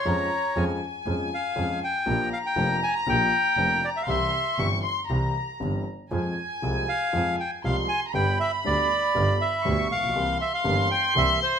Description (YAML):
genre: tango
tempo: 119 BPM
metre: 4/4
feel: rubato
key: unclear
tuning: A4 = 441 Hz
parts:
  - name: bandoneon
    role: melody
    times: 0.0-11.6 s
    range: C5 to Bb5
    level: -25 LUFS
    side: equal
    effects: none
  - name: warm chamber violin section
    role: second line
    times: 0.0-11.6 s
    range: Ab5 to Db6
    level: -28 LUFS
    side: equal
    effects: none
  - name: warm grand piano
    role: accompaniment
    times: 0.1-11.4 s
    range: F1 to Ab4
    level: -30 LUFS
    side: left 2 dB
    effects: none
  - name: clear double bass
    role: bass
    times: 0.1-11.4 s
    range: F1 to F2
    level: -29 LUFS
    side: right 2 dB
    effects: none
room: moderate large studio reverb, RT60 0.9 s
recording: minimal, uncompressed stereo recording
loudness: -22 LUFS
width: side -7 dB against mid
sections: 0.0-11.6 A section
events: none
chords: 0.1 Db/F; 2.1 Bb6; 4.1 C; 6.1 Fm; 8.2 G; 10.2 C7